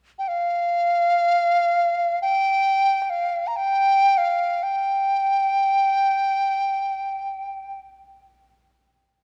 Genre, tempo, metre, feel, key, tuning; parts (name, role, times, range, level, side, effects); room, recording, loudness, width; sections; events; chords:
chinese traditional; free time; A4 = 438 Hz
large dizi; melody; 0.2-7.8 s; F5 to Bb5; -21 LUFS; equal
moderate concert hall reverb, RT60 2.1 s; faint mains hum; -21 LUFS; mono
0.0-9.2 A section